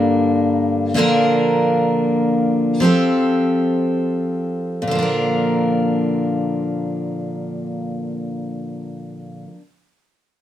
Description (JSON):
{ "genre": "folk", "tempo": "free time", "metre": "none", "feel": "none", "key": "Bb major", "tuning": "A4 = 440 Hz", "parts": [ { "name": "picked steel-string acoustic guitar", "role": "accompaniment", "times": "0.0-9.7 s", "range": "G2 to Bb4", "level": "-17 LUFS", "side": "equal", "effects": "none" } ], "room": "light reverb", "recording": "none", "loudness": "-17 LUFS", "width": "side -11 dB against mid", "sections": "0.0-4.9 A section; 4.9-9.3 B section", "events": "slowing down 0.9-4.9", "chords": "0.0 Gm; 0.9 Bb; 2.8 Fadd9; 4.9 Bb", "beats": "free time" }